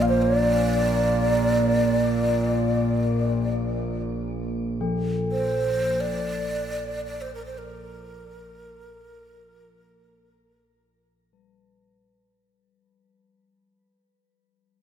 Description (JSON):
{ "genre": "world meditative, free-time meditation music", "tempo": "free time", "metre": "none", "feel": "none", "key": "Bb major pentatonic", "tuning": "A4 = 440 Hz", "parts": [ { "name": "breathy low xiao", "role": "melody", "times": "0.0-10.7 s", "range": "Bb4 to F5", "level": "-26 LUFS", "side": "equal", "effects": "shimmer reverb, ping-pong delay" }, { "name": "analog drone", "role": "drone", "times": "0.0-12.0 s", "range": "Bb1 to Bb2", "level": "-24 LUFS", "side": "right 1 dB", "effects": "chorus" }, { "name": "bronze singing bowl", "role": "texture", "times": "4.8-12.4 s", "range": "F3 to G3", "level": "-31 LUFS", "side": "left 3 dB", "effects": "shimmer reverb" } ], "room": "wet church reverb, RT60 2.8 s", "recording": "none", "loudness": "-21 LUFS", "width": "side -9 dB against mid", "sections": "0.0-11.9 A section", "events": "fade-out 0.0-11.9", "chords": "none" }